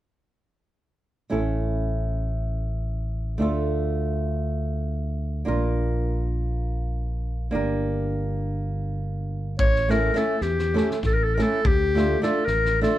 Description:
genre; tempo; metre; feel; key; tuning
balkan folk, Balkan wedding band; 203 BPM (eighths); 7/8; straight; A phrygian dominant; A4 = 440 Hz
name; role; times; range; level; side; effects
flamenco guitar; accompaniment; 1.3-13.0 s; A3 to Bb4; -27 LUFS; right 2 dB; none
fingered electric bass; bass; 1.3-12.8 s; G1 to E2; -26 LUFS; equal; none
bright clarinet; melody; 9.6-13.0 s; G4 to C#5; -23 LUFS; left 2 dB; none
loose indie drum kit; percussion; 9.6-12.9 s; kick drum, snare drum; -27 LUFS; left 1 dB; none
room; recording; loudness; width
wet small room reverb, RT60 0.5 s; heard from further back in the room; -22 LUFS; side -14 dB against mid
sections
1.3-9.6 A section; 9.6-13.0 B section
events
none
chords
1.3 A; 3.4 Dm; 5.5 Bb; 7.5 Gm; 9.6 A; 11.7 Dm

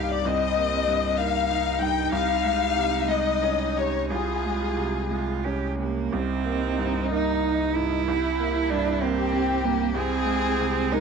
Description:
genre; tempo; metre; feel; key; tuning
neoclassical piano and strings; 58-64 BPM (dotted quarters); 6/8; rubato; C minor; A4 = 441 Hz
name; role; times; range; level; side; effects
warm chamber violin section; melody; 0.0-11.0 s; Eb4 to G5; -26 LUFS; left 11 dB; slapback echo
rich cello; second line; 0.0-11.0 s; Bb3 to G4; -27 LUFS; right 11 dB; none
bright grand piano; accompaniment; 0.0-11.0 s; C2 to Eb4; -29 LUFS; right 2 dB; none
pure sine sub bass; bass; 0.0-11.0 s; C2; -32 LUFS; right 1 dB; none
room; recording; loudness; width
moderate spring reverb, RT60 1.6 s, small room ambience; 1960s-style stereo with parts hard left and right; -22 LUFS; side -6 dB against mid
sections
0.0-6.1 A section; 6.1-11.0 B section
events
none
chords
0.0 Cm7; 2.1 Dbmaj7/C; 6.1 Cm7; 8.1 C7; 10.0 Fm/C (rootless)

